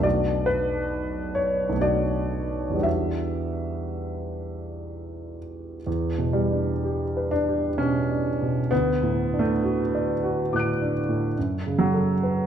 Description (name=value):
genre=classical, impressionist solo piano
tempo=56-71 BPM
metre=3/4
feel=rubato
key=E dorian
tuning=A4 = 445 Hz
part: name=warm concert grand piano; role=solo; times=0.0-12.5 s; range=B1 to D7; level=-23 LUFS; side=equal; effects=none
room=wet recital hall reverb, RT60 1.4 s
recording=dark, warm production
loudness=-22 LUFS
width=side -9 dB against mid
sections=0.0-5.9 A section; 5.9-12.5 B section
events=none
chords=0.1 Bm7; 2.9 Em9; 5.9 Em7; 8.7 D; 11.4 F#m